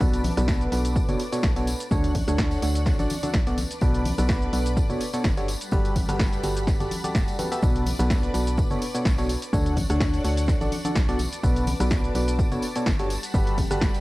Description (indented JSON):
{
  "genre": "piano house",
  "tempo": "126 BPM",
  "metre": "4/4",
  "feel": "swing 54% on 16ths",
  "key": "B minor",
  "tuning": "A4 = 440 Hz",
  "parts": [
    { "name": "analog string pad", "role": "sustained chords", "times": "0.0-14.0 s", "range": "G3 to F#6", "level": "-36 LUFS", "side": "equal", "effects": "ensemble chorus, sidechain pumping, cassette tape" },
    { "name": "barking FM electric piano", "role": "riff", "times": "0.0-14.0 s", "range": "B2 to E5", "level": "-28 LUFS", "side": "equal", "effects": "chorus, sidechain pumping, cassette tape" },
    { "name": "organ-like FM bass", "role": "bass", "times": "0.0-14.0 s", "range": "D1 to D2", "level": "-27 LUFS", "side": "equal", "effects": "sidechain pumping" },
    { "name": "electronic kick drum", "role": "drums", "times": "0.0-13.9 s", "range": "none", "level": "-24 LUFS", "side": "equal", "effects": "cassette tape" },
    { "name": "punchy analog drum machine", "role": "drums", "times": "0.0-14.0 s", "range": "hi-hat, rim click, shaker, snare drum", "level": "-32 LUFS", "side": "equal", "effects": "cassette tape" },
    { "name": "tambourine and congas", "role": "percussion", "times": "0.0-14.0 s", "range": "none", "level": "-36 LUFS", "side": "left 2 dB", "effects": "none" }
  ],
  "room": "little or no reverb",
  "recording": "home recording on cassette",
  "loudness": "-21 LUFS",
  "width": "side -19 dB against mid",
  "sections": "0.0-14.0 A section",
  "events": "none",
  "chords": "0.0 Bm7; 1.9 Dmaj7; 3.6 Bm7; 5.5 Gmaj9; 7.6 Bm7; 9.5 Dmaj7; 11.2 Bm7; 13.1 Gmaj9",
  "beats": "| 0.01 0.48 0.96 1.44 | 1.91 2.39 2.86 3.34 | 3.82 4.29 4.77 5.25 | 5.72 6.20 6.67 7.15 | 7.63 8.10 8.58 9.05 | 9.53 10.01 10.48 10.96 | 11.44 11.91 12.39 12.86 | 13.34 13.82"
}